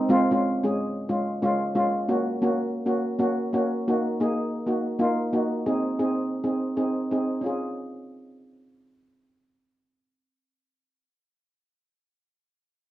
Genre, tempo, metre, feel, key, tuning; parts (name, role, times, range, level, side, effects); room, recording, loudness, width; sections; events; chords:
calypso; 134 BPM; 4/4; straight; Db major; A4 = 440 Hz
koto; melody; 0.0-1.8 s; barely audible
steel pan; accompaniment; 0.1-11.4 s; Ab3 to Ab4; -23 LUFS; equal
wet studio ambience, RT60 0.5 s; dark, warm production; -23 LUFS; side -14 dB against mid
0.3-7.4 A section; 7.4-11.0 B section
0.3 Db; 2.1 Gb; 3.9 Ebm; 5.7 Ab; 7.4 Db